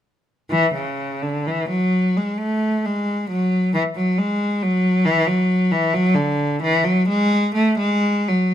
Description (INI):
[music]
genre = classical, baroque-style suite movement for unaccompanied cello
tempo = 61-70 BPM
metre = 3/4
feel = rubato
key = unclear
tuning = A4 = 436 Hz
[part]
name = rich cello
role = solo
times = 0.5-8.5 s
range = C#3 to A3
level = -17 LUFS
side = equal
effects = none
[sound]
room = moderate stone room reverb, RT60 1.0 s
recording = none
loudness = -17 LUFS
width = side -10 dB against mid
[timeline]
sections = 0.5-8.5 A section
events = none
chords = none